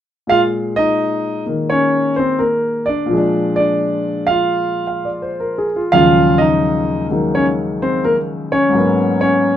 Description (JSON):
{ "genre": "solo jazz", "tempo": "85 BPM", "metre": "4/4", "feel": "swing 67% on 8ths", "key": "Bb minor", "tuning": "A4 = 440 Hz", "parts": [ { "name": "warm concert grand piano", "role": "solo", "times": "0.3-9.6 s", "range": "Eb2 to F5", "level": "-14 LUFS", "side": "equal", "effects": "none" } ], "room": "light reverb", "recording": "none", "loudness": "-14 LUFS", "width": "side -10 dB against mid", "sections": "0.3-9.6 A section", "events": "none", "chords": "0.3 Bbm9; 3.1 Bb7; 5.9 Ebm11; 8.7 Abm11" }